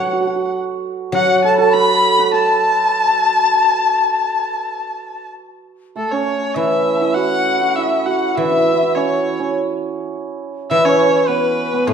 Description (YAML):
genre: chinese traditional, Chinese chamber ensemble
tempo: 102 BPM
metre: 4/4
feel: rubato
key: A gong mode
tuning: A4 = 440 Hz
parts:
  - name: rich erhu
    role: melody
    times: 0.0-11.9 s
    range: A4 to B5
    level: -18 LUFS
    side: equal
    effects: none
  - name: hammered dulcimer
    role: second line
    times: 0.0-11.9 s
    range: A3 to B4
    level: -20 LUFS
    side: right 7 dB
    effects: none
  - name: large dizi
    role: second line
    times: 0.0-11.9 s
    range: A4 to E6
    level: -20 LUFS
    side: left 7 dB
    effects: none
  - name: guzheng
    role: accompaniment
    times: 0.0-2.9, 6.6-11.9 s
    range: A2 to C#5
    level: -20 LUFS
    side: left 1 dB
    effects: none
room: wet recital hall reverb, RT60 1.4 s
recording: dark, warm production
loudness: -14 LUFS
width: side -7 dB against mid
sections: 0.0-6.0 A section; 6.0-11.9 B section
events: none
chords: none